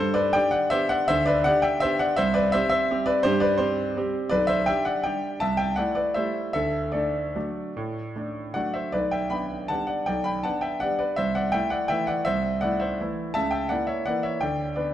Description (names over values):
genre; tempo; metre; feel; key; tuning
classical, piano waltz; 142-179 BPM; 3/4; rubato; G major; A4 = 443 Hz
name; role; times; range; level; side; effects
clear concert grand piano; solo; 0.0-14.9 s; B1 to B5; -22 LUFS; equal; none
room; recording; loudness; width
wet recital hall reverb, RT60 1.7 s; dark, warm production; -22 LUFS; side -11 dB against mid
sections
0.0-14.9 A section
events
none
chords
0.0 G; 2.2 C; 4.3 G/B; 5.4 Am7/C; 6.5 D; 8.9 G/B; 11.2 Am/C; 13.4 F#7b9b13/C#; 14.4 G/D